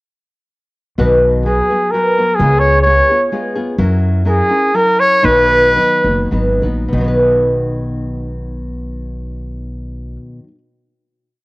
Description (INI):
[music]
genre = mexican folk, mariachi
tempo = 93-131 BPM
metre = 3/4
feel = rubato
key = B major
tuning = A4 = 436 Hz
[part]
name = nylon-string guitar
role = accompaniment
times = 1.0-10.6 s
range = B2 to B4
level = -17 LUFS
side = left 1 dB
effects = none
[part]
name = upright bass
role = bass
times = 1.0-10.2 s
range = F#1 to F#2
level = -18 LUFS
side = equal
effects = transformer saturation
[part]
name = warm trumpet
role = melody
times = 1.5-6.3 s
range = G#4 to C#5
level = -12 LUFS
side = equal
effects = cassette tape
[sound]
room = light reverb, small room ambience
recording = home recording on cassette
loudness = -11 LUFS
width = side -22 dB against mid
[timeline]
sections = 1.0-6.9 A section; 6.9-10.7 final chord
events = slowing down 3.8-6.9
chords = 1.0 B; 2.4 C#7; 3.8 F#7; 5.2 B